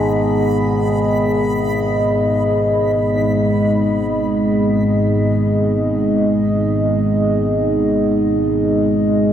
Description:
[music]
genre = dark ambient drone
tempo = free time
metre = none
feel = none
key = G# minor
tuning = A4 = 440 Hz
[part]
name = dark analog pad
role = sustained chords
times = 0.0-9.3 s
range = B3 to D#5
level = -18 LUFS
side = equal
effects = lush chorus
[part]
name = overtone-sweeping drone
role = drone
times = 0.0-9.3 s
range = G#1 to G#2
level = -17 LUFS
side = equal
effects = chorus, built-in reverb
[part]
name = backwards swelling texture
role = texture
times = 0.0-3.0 s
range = B5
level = -30 LUFS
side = right 2 dB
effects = built-in reverb
[sound]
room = wet cathedral reverb, RT60 5.2 s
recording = in a vast, echoing space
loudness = -14 LUFS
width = side -10 dB against mid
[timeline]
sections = 0.0-3.0 A section; 3.0-9.3 B section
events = none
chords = 0.0 G#m

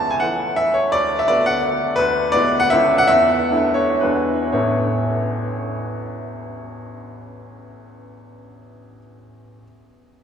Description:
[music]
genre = classical, romantic triple-time dance for piano with dotted rhythms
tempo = 106-186 BPM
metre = 3/4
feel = rubato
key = A major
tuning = A4 = 439 Hz
[part]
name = clear baby grand piano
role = solo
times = 0.0-9.7 s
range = A1 to A5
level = -17 LUFS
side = equal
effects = none
[sound]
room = wet cathedral reverb, RT60 6.1 s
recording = small room ambience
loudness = -16 LUFS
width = side -8 dB against mid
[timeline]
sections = 0.0-4.5 A section; 4.5-7.5 B section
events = slowing down 1.5-4.5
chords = 0.0 A/C#; 0.9 Bm7/D; 2.0 E7/D; 2.7 A/C#; 3.1 E7sus4; 4.0 E9; 4.5 A

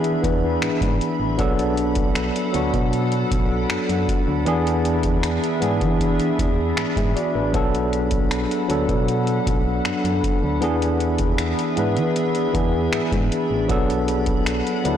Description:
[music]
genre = contemporary R&B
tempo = 78 BPM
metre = 4/4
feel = straight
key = B dorian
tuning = A4 = 436 Hz
[part]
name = tine electric piano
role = accompaniment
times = 0.0-15.0 s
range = E3 to E5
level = -22 LUFS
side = equal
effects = medium stereo tremolo
[part]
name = glassy FM pad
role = sustained chords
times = 0.0-15.0 s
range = D4 to B5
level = -26 LUFS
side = left 2 dB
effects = ensemble chorus, built-in reverb, sidechain pumping
[part]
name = solid FM bass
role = bass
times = 0.0-15.0 s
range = A1 to E3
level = -25 LUFS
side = equal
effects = none
[part]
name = booming analog drum machine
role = drums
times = 0.0-15.0 s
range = finger snaps, hi-hat, kick drum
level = -24 LUFS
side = equal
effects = soft clipping on snare
[sound]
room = moderate lush hall reverb, RT60 2.0 s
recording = blown-out, overdriven recording, overdrive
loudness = -18 LUFS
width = side -9 dB against mid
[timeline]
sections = 0.0-15.0 A section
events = none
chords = 0.0 E7; 1.4 Bm7; 4.5 E7; 7.5 Bm7; 10.6 E7; 13.7 Bm7

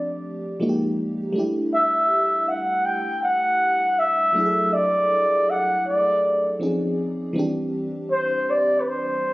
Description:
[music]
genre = R&B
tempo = 80 BPM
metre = 4/4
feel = swing 54% on 16ths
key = unclear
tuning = A4 = 439 Hz
[part]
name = breathy flugelhorn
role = melody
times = 0.0-9.3 s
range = B4 to G5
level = -19 LUFS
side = equal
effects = tape echo
[part]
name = FM electric piano with soft pad layer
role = accompaniment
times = 0.0-9.3 s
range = E3 to A4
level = -26 LUFS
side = equal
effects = chorus, tremolo
[sound]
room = light reverb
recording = recorded on a phone in the room, club reverb, compression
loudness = -19 LUFS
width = side -19 dB against mid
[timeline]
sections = 0.0-9.3 A section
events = none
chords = 0.0 F69; 0.6 Fm11; 1.4 Em11; 6.6 C#maj9; 7.4 Cadd9

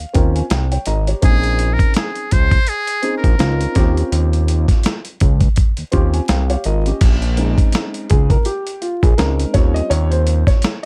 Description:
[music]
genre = hip hop, jazz-hop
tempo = 83 BPM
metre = 4/4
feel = swing 58% on 16ths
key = Bb dorian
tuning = A4 = 440 Hz
[part]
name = dark upright piano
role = accompaniment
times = 0.0-10.9 s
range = G3 to C6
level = -24 LUFS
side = equal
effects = plate reverb
[part]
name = fat analog bass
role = bass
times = 0.0-10.4 s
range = Ab1 to Eb2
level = -19 LUFS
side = equal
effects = none
[part]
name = dusty soul sampler-style drum kit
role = drums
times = 0.1-10.8 s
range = crash cymbal, hi-hat, kick drum, snare drum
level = -18 LUFS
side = equal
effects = none
[part]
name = trumpet with metal mute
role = melody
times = 1.2-4.2 s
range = Ab4 to C5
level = -24 LUFS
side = equal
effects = none
[sound]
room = little or no reverb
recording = vinyl crackle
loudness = -16 LUFS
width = mono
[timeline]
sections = 0.0-7.0 A section; 7.0-10.9 A section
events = upright piano fill 0.0-1.2, 5.6-7.0; muted trumpet solo 0.0-7.0; upright piano solo 7.0-10.9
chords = 0.0 Eb13; 1.2 Bbm11; 3.8 Eb13; 7.0 Bbm11; 9.5 Eb13

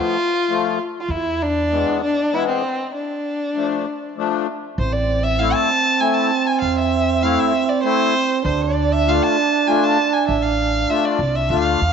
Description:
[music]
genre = klezmer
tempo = 98 BPM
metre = 3/4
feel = straight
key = D dorian sharp4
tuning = A4 = 440 Hz
[part]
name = warm violin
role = melody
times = 0.0-11.9 s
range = C4 to A5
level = -20 LUFS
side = equal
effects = none
[part]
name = accordion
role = accompaniment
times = 0.0-11.8 s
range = E3 to F4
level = -23 LUFS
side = left 10 dB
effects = light tremolo tuning
[part]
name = upright bass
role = bass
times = 1.1-1.8, 4.8-11.9 s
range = A1 to E2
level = -23 LUFS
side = equal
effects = none
[part]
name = mellow trombone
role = second line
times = 4.8-11.8 s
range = C4 to D4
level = -21 LUFS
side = right 10 dB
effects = none
[sound]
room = moderate echo chamber reverb, RT60 2.1 s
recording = 1960s-style stereo with parts hard left and right, nothing above 7.7 kHz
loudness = -17 LUFS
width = side -6 dB against mid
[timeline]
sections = 0.0-4.8 A section; 4.8-11.9 B section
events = break 2.9-4.8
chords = 0.0 Dm (rootless); 1.1 E; 2.9 Dm; 4.8 Am; 8.4 Dm

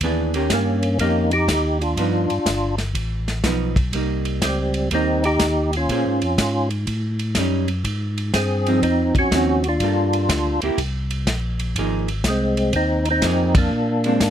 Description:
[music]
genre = soul jazz organ trio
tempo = 123 BPM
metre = 4/4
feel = swing 66% on 8ths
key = Eb mixolydian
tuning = A4 = 440 Hz
[part]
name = vintage hollow-body jazz guitar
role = accompaniment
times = 0.0-14.2 s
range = Eb3 to C5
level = -23 LUFS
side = right 2 dB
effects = none
[part]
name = tonewheel organ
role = bass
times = 0.0-14.3 s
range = G1 to Bb2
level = -23 LUFS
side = equal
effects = overdrive, chorus vibrato, slow rotary speaker
[part]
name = warm soul drum kit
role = drums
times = 0.0-14.3 s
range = hi-hat, kick drum, ride cymbal, snare drum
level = -24 LUFS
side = equal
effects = none
[part]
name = percussive tonewheel organ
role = melody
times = 0.5-14.3 s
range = G3 to Ab4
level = -20 LUFS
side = equal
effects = slow rotary speaker, chorus vibrato
[sound]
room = little or no reverb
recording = close, detailed microphones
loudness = -18 LUFS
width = side -9 dB against mid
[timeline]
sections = 0.0-14.3 A section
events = band accent 13.5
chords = 0.0 Eb7; 2.0 G7b13; 3.9 Cm7; 5.9 Bbm9; 6.9 A7#11; 7.9 Ab6; 9.8 Gm9; 10.8 Bbsus2; 11.8 Fm7; 13.7 Bb9

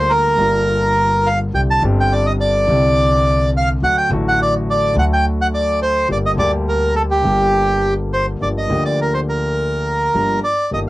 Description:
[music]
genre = tango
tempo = 105 BPM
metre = 4/4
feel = rubato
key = G minor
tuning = A4 = 440 Hz
[part]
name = bandoneon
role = melody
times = 0.0-10.8 s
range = G4 to A5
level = -16 LUFS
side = right 1 dB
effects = cassette tape
[part]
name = warm concert grand piano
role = accompaniment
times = 0.0-10.9 s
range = G1 to G4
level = -20 LUFS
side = left 1 dB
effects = none
[part]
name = upright bass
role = bass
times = 0.0-10.9 s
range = G1 to D2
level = -22 LUFS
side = equal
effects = tube saturation
[sound]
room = moderate booth ambience, RT60 0.2 s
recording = home recording on cassette, nothing above 10.4 kHz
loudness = -14 LUFS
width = side -18 dB against mid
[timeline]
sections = 0.0-8.4 A section; 8.4-10.9 A section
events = none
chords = 0.0 Gm7; 1.5 Csus2; 3.8 D; 6.1 Gm; 8.4 Gm7

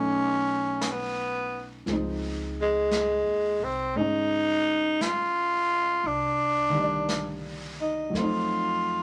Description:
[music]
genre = jazz ballad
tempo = 57 BPM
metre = 4/4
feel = swing 66% on 8ths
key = unclear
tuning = A4 = 440 Hz
[part]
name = growling tenor saxophone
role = melody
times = 0.0-9.0 s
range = Ab3 to F4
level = -27 LUFS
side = equal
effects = none
[part]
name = warm baby grand piano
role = accompaniment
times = 0.0-9.0 s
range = Eb3 to D5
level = -35 LUFS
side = equal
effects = none
[part]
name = upright bass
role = bass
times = 0.0-9.0 s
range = Ab1 to F2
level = -42 LUFS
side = equal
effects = none
[part]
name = jazz brush drum kit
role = drums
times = 0.8-9.0 s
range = brushed snare drum, hi-hat, snare drum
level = -40 LUFS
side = equal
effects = none
[sound]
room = moderate studio ambience, RT60 0.4 s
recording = none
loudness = -27 LUFS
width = mono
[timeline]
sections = 0.0-9.0 A section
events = none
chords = 0.0 B9; 1.9 Dbmaj9; 6.0 Cm9; 8.1 F7b9

